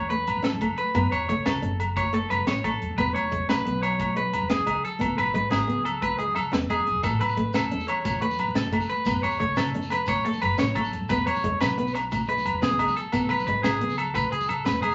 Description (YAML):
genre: highlife guitar band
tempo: 118 BPM (dotted quarters)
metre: 12/8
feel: straight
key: A major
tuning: A4 = 440 Hz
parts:
  - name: electric guitar at the edge of break-up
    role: arpeggios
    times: 0.0-14.9 s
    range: G#4 to C#5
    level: -29 LUFS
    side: equal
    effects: none
  - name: upright bass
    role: bass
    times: 0.0-14.9 s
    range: E1 to A2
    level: -34 LUFS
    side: equal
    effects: none
  - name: nylon-string guitar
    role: accompaniment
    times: 0.1-14.9 s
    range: G#3 to C#4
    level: -34 LUFS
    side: equal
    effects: none
  - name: tight funk drum kit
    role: drums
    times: 0.1-14.9 s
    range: hi-hat, kick drum, snare drum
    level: -33 LUFS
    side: equal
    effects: none
  - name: congas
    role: percussion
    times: 0.2-14.9 s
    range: none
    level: -38 LUFS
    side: equal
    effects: none
  - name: agogo bells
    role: percussion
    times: 0.3-14.9 s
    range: none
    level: -32 LUFS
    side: equal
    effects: none
  - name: shekere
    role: percussion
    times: 7.0-14.9 s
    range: none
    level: -40 LUFS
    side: equal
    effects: none
room: wet club reverb, RT60 0.7 s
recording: vinyl crackle, nothing above 7.7 kHz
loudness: -25 LUFS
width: mono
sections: 0.0-14.9 A section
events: drum fill 6.5-7.0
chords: 0.0 A; 3.0 E; 7.0 A; 11.1 E